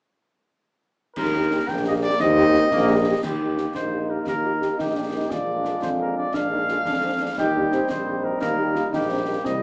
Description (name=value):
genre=military-style march for wind band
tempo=116 BPM (dotted quarters)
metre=6/8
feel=straight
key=Eb major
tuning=A4 = 440 Hz
part: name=mellow cornet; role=melody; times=1.2-9.6 s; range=G4 to G5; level=-24 LUFS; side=equal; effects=none
part: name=mellow tuba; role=bass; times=1.2-9.6 s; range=Bb1 to F2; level=-24 LUFS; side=equal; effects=none
part: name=concert snare drum, clash cymbals and concert bass drum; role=drums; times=1.2-9.6 s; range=none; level=-33 LUFS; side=equal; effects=none
part: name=mellow French horn section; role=accompaniment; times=1.3-9.3 s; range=Bb3 to Ab4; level=-30 LUFS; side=equal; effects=none
part: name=clear trombone section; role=sustained chords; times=1.7-9.6 s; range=G3 to Eb4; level=-30 LUFS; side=equal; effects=none
part: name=clear euphonium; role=second line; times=3.7-9.5 s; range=Bb3 to G4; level=-27 LUFS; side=equal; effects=none
room=wet large studio reverb, RT60 0.9 s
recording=heard from further back in the room, small speaker sound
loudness=-20 LUFS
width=side -38 dB against mid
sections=1.2-3.2 A section; 3.2-9.6 B section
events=none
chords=1.2 Eb; 5.3 Bb7; 7.4 Eb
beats=| 1.16 1.68 | 2.19 2.71 | 3.23 3.75 | 4.26 4.78 | 5.30 5.82 | 6.34 6.86 | 7.38 7.89 | 8.41 8.93 | 9.45